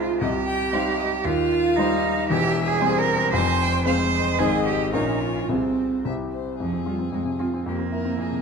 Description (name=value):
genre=quick classical-period movement for piano trio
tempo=114 BPM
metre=2/4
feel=rubato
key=F minor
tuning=A4 = 439 Hz
part: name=rich violin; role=melody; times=0.0-8.4 s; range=G4 to Ab5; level=-31 LUFS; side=left 7 dB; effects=none
part: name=rich cello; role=second line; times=0.0-8.4 s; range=F3 to C5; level=-24 LUFS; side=right 6 dB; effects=none
part: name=clear concert grand piano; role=accompaniment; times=0.0-8.4 s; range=E1 to C5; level=-24 LUFS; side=left 2 dB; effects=none
room=wet recital hall reverb, RT60 1.4 s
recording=dark, warm production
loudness=-20 LUFS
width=side -5 dB against mid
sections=0.0-6.6 A section; 6.6-8.4 B section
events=none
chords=0.2 Cm; 1.3 Cm/Eb; 2.3 C/E; 3.3 Fm; 4.4 Ab; 4.9 Bbm; 5.5 Fm/C; 6.0 C; 6.6 Fm; 7.7 C7/F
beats=| 0.21 0.73 | 1.25 1.77 | 2.29 2.81 | 3.34 3.86 | 4.39 4.93 | 5.49 6.05 | 6.60 7.12 | 7.66 8.19